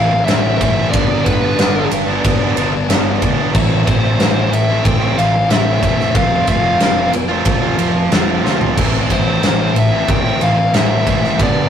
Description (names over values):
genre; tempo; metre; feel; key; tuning
quiet-loud alternative rock; 92 BPM; 4/4; straight; A minor; A4 = 440 Hz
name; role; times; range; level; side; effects
biting lead guitar; melody; 0.0-11.7 s; B4 to G5; -18 LUFS; left 1 dB; overdrive
distorted electric guitar; riff; 0.0-11.7 s; G2 to F4; -20 LUFS; right 6 dB; overdrive
thick fuzz guitar; riff; 0.0-11.7 s; G2 to F4; -19 LUFS; left 3 dB; distortion
fuzz picked electric bass; bass; 0.0-11.7 s; E1 to D2; -22 LUFS; equal; overdrive
big rock drum kit; drums; 0.3-11.5 s; crash cymbal, kick drum, ride cymbal, snare drum, toms; -16 LUFS; equal; none
room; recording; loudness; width
moderate booth ambience, RT60 0.2 s; rough rehearsal-room recording, warm saturation; -12 LUFS; side -8 dB against mid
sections
0.0-11.7 A section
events
drum fill 8.4-8.8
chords
0.0 Am; 0.9 G; 3.5 Am; 6.2 F; 8.8 Am